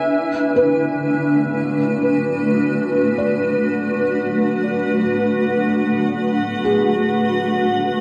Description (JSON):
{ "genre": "ambient", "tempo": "free time", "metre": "none", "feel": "none", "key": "unclear", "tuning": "A4 = 435 Hz", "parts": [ { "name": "granular cloud pad", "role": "sustained chords", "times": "0.0-8.0 s", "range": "A3 to G#5", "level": "-19 LUFS", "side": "equal", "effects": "built-in reverb" }, { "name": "felt-muted upright piano", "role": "arpeggios", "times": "0.6-8.0 s", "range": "G#4 to D5", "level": "-26 LUFS", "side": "equal", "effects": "delay" } ], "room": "wet lush hall reverb, RT60 2.8 s", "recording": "dark, warm production", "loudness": "-19 LUFS", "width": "mono", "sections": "0.1-8.0 A section", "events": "none", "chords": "0.1 Bm7" }